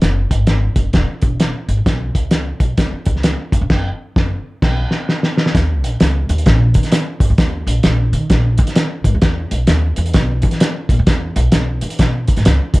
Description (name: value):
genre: uptempo 1960s-style soul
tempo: 130 BPM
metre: 4/4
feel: swing 62% on 8ths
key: unclear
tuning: A4 = 438 Hz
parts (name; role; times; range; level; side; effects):
- upright bass; bass; 0.0-12.8 s; E1 to E3; -17 LUFS; equal; none
- cloth-damped thuddy drum kit; drums; 0.0-12.8 s; crash cymbal, hi-hat, kick drum, snare drum; -15 LUFS; equal; none
room: light reverb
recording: dark, warm production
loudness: -13 LUFS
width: side -21 dB against mid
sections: 0.0-5.5 A section; 5.5-12.8 B section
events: band accent 3.7-5.5; drum fill 4.6-5.5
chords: none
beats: | 0.02 0.48 0.94 1.40 | 1.86 2.32 2.78 3.24 | 3.70 4.16 4.62 5.08 | 5.54 6.00 6.46 6.92 | 7.38 7.84 8.30 8.76 | 9.23 9.69 10.15 10.61 | 11.07 11.53 12.00 12.46